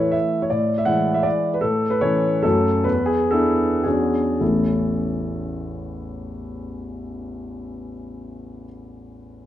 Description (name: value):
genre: classical, romantic triple-time dance for piano with dotted rhythms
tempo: 102-170 BPM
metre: 3/4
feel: rubato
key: A major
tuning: A4 = 440 Hz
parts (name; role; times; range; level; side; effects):
- warm concert grand piano; solo; 0.0-9.5 s; A1 to F#5; -20 LUFS; equal; none
room: moderate recital hall reverb, RT60 1.6 s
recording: dark, warm production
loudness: -18 LUFS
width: side -12 dB against mid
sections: 0.0-4.4 A section; 4.4-7.7 B section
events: slowing down 1.1-4.4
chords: 0.0 A; 0.5 E/A; 1.6 A; 2.5 F#m; 2.9 E7sus4; 3.8 E13; 4.4 A